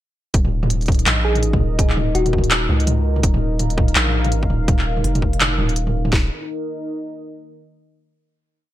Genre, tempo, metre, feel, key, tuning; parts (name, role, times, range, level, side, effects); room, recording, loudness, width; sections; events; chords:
half-time drum and bass; 166 BPM; 4/4; swing 60% on 16ths, half-time; A4 = 440 Hz
dark analog pad; sustained chords; 0.8-7.5 s; Eb4 to F5; -27 LUFS; equal; chorus, sidechain pumping
long sustained 808-style bass; bass; 0.3-6.3 s; Eb1 to Db2; -20 LUFS; equal
industrial drum kit; drums; 0.3-6.1 s; handclaps, hi-hat, toms; -21 LUFS; right 1 dB; gated reverb
trap drum kit; drums; 0.3-6.2 s; kick drum, snare drum; -18 LUFS; equal
thumb-piano-like synth pluck; melody; 1.2-2.7 s; Gb4 to Ab4; -25 LUFS; left 2 dB; chorus, cassette tape, digital delay
light reverb, digital ambience; bright 1980s-style digital production; -16 LUFS; side -13 dB against mid
0.3-6.1 drop; 6.1-7.6 final chord
drop 0.3-6.1
0.3 Eb5